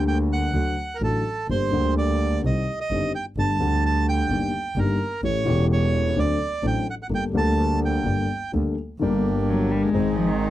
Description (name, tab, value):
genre	tango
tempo	128 BPM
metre	4/4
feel	rubato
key	G harmonic minor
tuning	A4 = 441 Hz
part	bandoneon	melody	0.0-8.5 s	A4 to A5	-27 LUFS	right 4 dB	none
part	warm grand piano	accompaniment	0.0-10.5 s	E1 to A4	-24 LUFS	left 3 dB	none
part	clear double bass	bass	0.0-10.5 s	E1 to D2	-26 LUFS	right 2 dB	none
part	bandoneon	stabs	9.0-10.5 s	Bb3 to Ab4	-29 LUFS	right 3 dB	none
part	warm cello	second line	9.5-10.5 s	Eb3 to Ab3	-24 LUFS	left 4 dB	none
room	light reverb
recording	dry, close 1970s-style studio recording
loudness	-21 LUFS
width	side -14 dB against mid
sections	0.0-9.0 A section; 9.0-10.5 B section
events	cello solo 9.0-10.5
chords	0.0 Gm/D; 0.5 D; 1.5 Gm; 2.4 Cm; 3.4 Gsus2; 4.3 Eb/G; 5.2 A7; 6.2 D7; 7.1 Gmadd9; 9.0 Gm; 9.9 Ab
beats	0.07 0.54 1.01 | 1.49 1.97 2.44 2.91 | 3.38 3.84 4.30 4.77 | 5.23 5.70 6.17 6.64 | 7.11 7.57 8.05 8.54 | 9.01 9.48 9.94 10.40